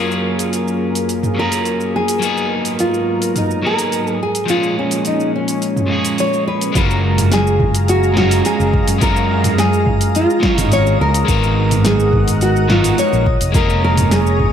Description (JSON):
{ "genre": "sunset chillout", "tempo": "106 BPM", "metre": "4/4", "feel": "straight", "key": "F# major", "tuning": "A4 = 440 Hz", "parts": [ { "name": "electric guitar at the edge of break-up", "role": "accompaniment", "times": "0.0-14.5 s", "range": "E#3 to A#4", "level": "-20 LUFS", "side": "moving between left 3 dB and right 5 dB", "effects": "auto-pan, low-pass filter" }, { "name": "lush unison pad", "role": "sustained chords", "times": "0.0-14.5 s", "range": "F#2 to A#5", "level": "-24 LUFS", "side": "right 1 dB", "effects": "chorus" }, { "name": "deep house drum kit", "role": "drums", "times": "0.1-14.5 s", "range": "hi-hat, shaker, snare drum, toms", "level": "-20 LUFS", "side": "equal", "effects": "overdrive" }, { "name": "nylon-string guitar", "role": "melody", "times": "1.4-14.5 s", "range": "C#4 to C#5", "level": "-18 LUFS", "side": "equal", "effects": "tape echo" }, { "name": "fretless electric bass", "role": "bass", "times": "6.8-14.5 s", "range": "E#1 to F#2", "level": "-17 LUFS", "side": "equal", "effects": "none" }, { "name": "electronic kick drum", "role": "drums", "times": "6.8-14.5 s", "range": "none", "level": "-19 LUFS", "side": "equal", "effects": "overdrive" }, { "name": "drifting glass-harmonics texture", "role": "texture", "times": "7.7-14.5 s", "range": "D#5 to D#6", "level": "-29 LUFS", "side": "left 2 dB", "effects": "chorus, built-in reverb" } ], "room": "light reverb, digital ambience", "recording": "none", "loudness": "-13 LUFS", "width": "side -8 dB against mid", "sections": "0.0-6.8 A section; 6.8-14.5 B section", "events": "none", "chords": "0.0 F#maj9; 2.2 G#m9; 4.2 A#m7; 6.8 F#maj9; 11.3 G#m9; 13.3 A#m7" }